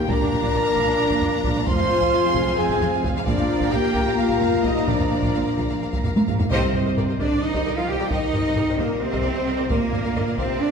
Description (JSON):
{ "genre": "cinematic, epic orchestral film score", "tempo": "264 BPM (eighths)", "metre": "7/8", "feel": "straight", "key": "C minor", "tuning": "A4 = 441 Hz", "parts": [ { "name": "clear chamber violin section", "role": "melody", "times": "0.0-10.7 s", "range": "Bb4 to C6", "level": "-31 LUFS", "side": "left 4 dB", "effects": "none" }, { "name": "warm symphonic viola section", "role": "accompaniment", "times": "0.0-10.4 s", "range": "F3 to D5", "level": "-28 LUFS", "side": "right 1 dB", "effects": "none" }, { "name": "mellow trombone section", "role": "sustained chords", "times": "0.0-10.7 s", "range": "Bb2 to Bb3", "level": "-32 LUFS", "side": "right 2 dB", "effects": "none" }, { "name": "rich symphonic string section", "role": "sustained chords", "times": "0.0-10.7 s", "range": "Bb3 to F5", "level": "-31 LUFS", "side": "left 2 dB", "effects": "none" }, { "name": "warm French horn section", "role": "sustained chords", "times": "0.0-10.7 s", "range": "Bb3 to C5", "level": "-26 LUFS", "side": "left 4 dB", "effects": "none" }, { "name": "clear trumpet section", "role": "stabs", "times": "0.0-10.7 s", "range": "Bb4 to C6", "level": "-28 LUFS", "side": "right 4 dB", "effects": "none" }, { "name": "clear symphonic violin section", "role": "second line", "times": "0.1-10.4 s", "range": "Bb4 to Bb5", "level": "-32 LUFS", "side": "left 2 dB", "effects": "none" }, { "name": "clear symphonic cello section", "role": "bass", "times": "0.1-10.7 s", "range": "F2 to G4", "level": "-27 LUFS", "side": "right 2 dB", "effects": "none" }, { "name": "clear symphonic double bass section", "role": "bass", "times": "0.1-10.4 s", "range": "F1 to D2", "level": "-31 LUFS", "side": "right 2 dB", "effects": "none" }, { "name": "taiko ensemble", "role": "drums", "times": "0.1-10.7 s", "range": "none", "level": "-26 LUFS", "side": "equal", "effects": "none" }, { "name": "timpani", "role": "percussion", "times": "6.5-7.2 s", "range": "C3", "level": "-29 LUFS", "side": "right 1 dB", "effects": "none" } ], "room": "wet scoring stage reverb, RT60 1.5 s", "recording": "heard from further back in the room", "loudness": "-19 LUFS", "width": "side -6 dB against mid", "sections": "0.0-6.5 A section; 6.5-10.7 B section", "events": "drum fill 6.2-6.5; band accent 6.5-7.0", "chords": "0.1 Bb; 1.7 Fm; 3.3 Bb; 6.5 Cm7; 9.7 Bb/D" }